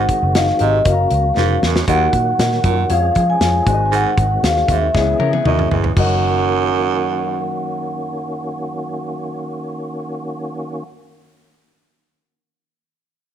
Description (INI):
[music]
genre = uptempo 1960s-style soul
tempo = 117 BPM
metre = 4/4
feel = straight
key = F# major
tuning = A4 = 440 Hz
[part]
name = vibraphone with soft mallets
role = melody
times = 0.0-10.9 s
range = D#5 to G#5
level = -20 LUFS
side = equal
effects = none
[part]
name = dark upright piano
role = accompaniment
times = 0.0-10.9 s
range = F#2 to A#5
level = -26 LUFS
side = left 11 dB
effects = none
[part]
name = percussive tonewheel organ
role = sustained chords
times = 0.0-10.8 s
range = C#3 to G#4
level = -26 LUFS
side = equal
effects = slow rotary speaker, overdrive, chorus vibrato
[part]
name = raspy baritone saxophone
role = riff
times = 0.0-7.5 s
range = D#2 to B#2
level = -21 LUFS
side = right 10 dB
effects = none
[part]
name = vintage muted picked electric bass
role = bass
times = 0.0-10.8 s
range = E#1 to E#3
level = -19 LUFS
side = equal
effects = none
[part]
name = natural country drum kit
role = drums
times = 0.1-6.1 s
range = crash cymbal, hi-hat, kick drum, snare drum, toms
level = -20 LUFS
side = equal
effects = none
[part]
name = archtop guitar, miked and amplified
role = riff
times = 4.9-5.9 s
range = B3 to A#4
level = -25 LUFS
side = left 13 dB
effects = none
[sound]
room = light reverb, studio reverb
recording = 1960s-style stereo with parts hard left and right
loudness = -15 LUFS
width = side -9 dB against mid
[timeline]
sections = 0.0-1.9 A section; 1.9-6.0 B section; 6.0-10.1 C section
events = drum fill 1.4-1.9, 4.9-6.0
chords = 0.0 G#7; 0.9 F#; 1.9 D#m; 2.9 C#/E#; 3.7 G#7; 4.9 C#m; 6.0 F#6